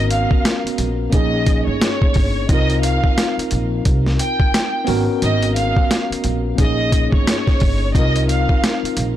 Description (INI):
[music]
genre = hip hop, boom-bap hip-hop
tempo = 88 BPM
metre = 4/4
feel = swing 59% on 16ths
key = C phrygian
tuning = A4 = 440 Hz
[part]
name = warm studio violin section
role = melody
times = 0.0-8.8 s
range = Db5 to G5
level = -23 LUFS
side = right 1 dB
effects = high-pass filter, low-pass filter, digital delay
[part]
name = tine electric piano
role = accompaniment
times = 0.0-9.2 s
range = Bb3 to Bb4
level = -22 LUFS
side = equal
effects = slow stereo tremolo, high-pass filter, low-pass filter
[part]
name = upright bass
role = bass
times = 0.0-9.2 s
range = G1 to C2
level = -20 LUFS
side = equal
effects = tube saturation
[part]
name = boom bap sampler-style drum kit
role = drums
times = 0.1-9.2 s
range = hi-hat, kick drum, snare drum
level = -18 LUFS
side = equal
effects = none
[sound]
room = small room ambience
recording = blown-out, overdriven recording, overdrive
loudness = -15 LUFS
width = side -12 dB against mid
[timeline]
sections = 0.0-9.2 A section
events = none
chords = 0.0 Abm11; 1.1 Bbm7; 2.5 Cm7; 4.9 Abm11; 6.6 Bbm7; 7.9 Cm7